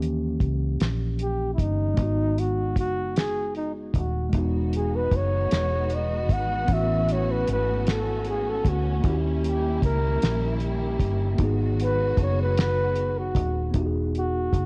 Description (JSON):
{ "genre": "slow six-eight R&B", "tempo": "51 BPM (dotted quarters)", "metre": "6/8", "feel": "straight", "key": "E major", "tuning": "A4 = 438 Hz", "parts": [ { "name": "mellow tine electric piano", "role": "accompaniment", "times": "0.0-14.7 s", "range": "E3 to G#4", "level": "-34 LUFS", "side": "equal", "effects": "cassette tape" }, { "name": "vintage muted fingered electric bass", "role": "bass", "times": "0.0-14.7 s", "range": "D#1 to D#2", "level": "-29 LUFS", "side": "equal", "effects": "tube saturation" }, { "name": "cloth-damped thuddy drum kit", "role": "drums", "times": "0.0-14.7 s", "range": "hi-hat, kick drum, snare drum", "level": "-27 LUFS", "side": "equal", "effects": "cassette tape" }, { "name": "breathy flugelhorn", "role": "melody", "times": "1.2-14.7 s", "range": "D#4 to F#5", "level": "-30 LUFS", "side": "equal", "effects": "cassette tape" }, { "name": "warm studio string section", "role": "sustained chords", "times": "4.3-13.7 s", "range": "D#3 to F#4", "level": "-37 LUFS", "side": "equal", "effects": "cassette tape" } ], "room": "small room ambience", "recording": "home recording on cassette", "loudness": "-25 LUFS", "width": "mono", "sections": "0.0-13.7 A section", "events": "flugelhorn solo 0.0-13.7", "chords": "0.0 D#7b9; 2.0 G#m7; 4.3 Emaj9; 6.7 A69; 9.0 D#7b9; 11.4 G#m7; 13.7 Emaj9", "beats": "0.80 | 1.98 3.16 | 4.33 5.51 | 6.68 7.86 | 9.04 10.21 | 11.39 12.57 | 13.74" }